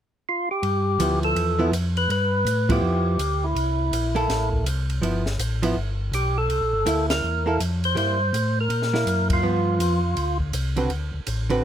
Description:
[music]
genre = soul jazz organ trio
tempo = 163 BPM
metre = 4/4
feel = swing 63% on 8ths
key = unclear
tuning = A4 = 440 Hz
[part]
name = percussive tonewheel organ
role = melody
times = 0.3-10.4 s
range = E4 to C5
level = -24 LUFS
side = equal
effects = slow rotary speaker, overdrive
[part]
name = mellow tonewheel organ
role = bass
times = 0.6-11.6 s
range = G1 to A#2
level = -24 LUFS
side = equal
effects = slow rotary speaker
[part]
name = compact cocktail drum kit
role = drums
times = 0.6-11.6 s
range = hi-hat, kick drum, ride cymbal, snare drum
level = -31 LUFS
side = equal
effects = none
[part]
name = archtop guitar, miked and amplified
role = accompaniment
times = 1.0-11.6 s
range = D3 to B4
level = -25 LUFS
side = right 2 dB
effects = none
[sound]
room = light reverb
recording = close, detailed microphones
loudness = -21 LUFS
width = side -10 dB against mid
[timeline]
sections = 0.6-11.6 A section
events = band accent 2.6, 7.0, 9.3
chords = 0.0 N.C.; 0.6 G13; 3.6 C6; 5.0 G13; 6.5 C13; 8.0 F#7#11; 9.4 G7; 10.9 D13

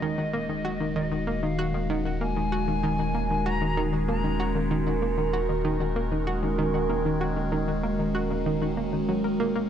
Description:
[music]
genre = ambient, sequencer-driven space music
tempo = 96 BPM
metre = 4/4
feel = straight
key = unclear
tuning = A4 = 440 Hz
[part]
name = wooden flute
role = melody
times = 0.0-4.5 s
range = D#5 to A#5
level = -33 LUFS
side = left 3 dB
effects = tape echo
[part]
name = evolving wavetable pad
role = sustained chords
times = 0.0-9.7 s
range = D#3 to A#4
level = -28 LUFS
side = right 1 dB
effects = phaser, built-in reverb
[part]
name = analog pluck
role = riff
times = 0.0-9.7 s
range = D#3 to A#4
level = -29 LUFS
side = equal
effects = chorus, tape echo
[part]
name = round analog bass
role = bass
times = 0.0-9.7 s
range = D#1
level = -32 LUFS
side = equal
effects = none
[sound]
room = moderate plate reverb, RT60 2.4 s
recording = dark, warm production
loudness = -24 LUFS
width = side -9 dB against mid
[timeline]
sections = 0.0-9.7 A section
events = none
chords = 0.0 D#m

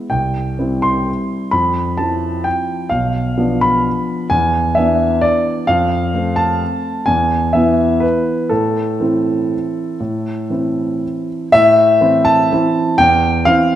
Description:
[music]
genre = classical, piano waltz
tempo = 115-138 BPM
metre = 3/4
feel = rubato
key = A minor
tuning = A4 = 440 Hz
[part]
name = warm grand piano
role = solo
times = 0.0-13.8 s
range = B1 to C6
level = -13 LUFS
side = equal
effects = none
[sound]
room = moderate scoring stage reverb, RT60 1.5 s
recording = none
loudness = -13 LUFS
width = side -11 dB against mid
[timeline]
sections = 0.0-11.5 A section; 11.5-13.8 B section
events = none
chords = 0.1 C; 1.5 Fmaj7; 2.9 Bdim; 4.3 E7; 5.7 F; 7.1 E; 8.5 Am

